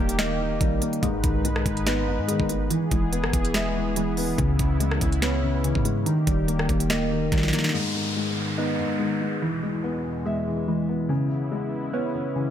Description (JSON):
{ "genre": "hip hop, trap", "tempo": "143 BPM", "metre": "4/4", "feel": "half-time", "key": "G# harmonic minor", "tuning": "A4 = 437 Hz", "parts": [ { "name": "dark grand piano", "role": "accompaniment", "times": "0.0-12.5 s", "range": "G#2 to E5", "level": "-28 LUFS", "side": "left 4 dB", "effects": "none" }, { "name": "warm analog pad", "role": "sustained chords", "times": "0.0-12.5 s", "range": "E2 to B4", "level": "-33 LUFS", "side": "right 1 dB", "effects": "chorus" }, { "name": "soft electric-piano-like synth keys", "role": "arpeggios", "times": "0.0-12.5 s", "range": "C#3 to B3", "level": "-27 LUFS", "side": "right 1 dB", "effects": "chorus, ping-pong delay" }, { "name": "clean 808-style bass", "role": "bass", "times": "0.0-7.5 s", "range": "D#1 to G#2", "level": "-28 LUFS", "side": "equal", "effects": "none" }, { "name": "trap drum kit", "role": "drums", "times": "0.1-7.8 s", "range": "hi-hat, kick drum, rim click, snare drum", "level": "-27 LUFS", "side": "equal", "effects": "overdrive" }, { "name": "downlifter and swell", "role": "sound effects", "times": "7.7-12.5 s", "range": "none", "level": "-34 LUFS", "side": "equal", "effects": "none" } ], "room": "light reverb", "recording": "none", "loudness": "-22 LUFS", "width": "side -10 dB against mid", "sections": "0.0-7.7 A section; 7.7-12.5 B section", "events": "drum fill 7.3-7.7", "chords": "0.0 D#; 1.0 G#m; 2.7 E; 4.4 C#m7; 6.1 D#; 7.7 G#m; 9.4 E; 11.1 C#m7" }